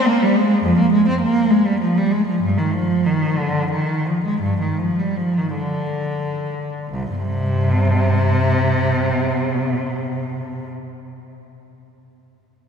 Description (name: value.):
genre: classical, baroque-style suite movement for unaccompanied cello.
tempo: 42-70 BPM (dotted quarters).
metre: 12/8.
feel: rubato.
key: C minor.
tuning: A4 = 441 Hz.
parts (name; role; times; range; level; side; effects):
rich cello; solo; 0.0-10.7 s; C2 to C4; -17 LUFS; equal; none.
room: wet church reverb, RT60 3.5 s.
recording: minimal, uncompressed stereo recording.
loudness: -17 LUFS.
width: side -6 dB against mid.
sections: 0.0-6.9 A section; 6.9-12.2 B section.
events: slowing down 0.1-6.9.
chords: none.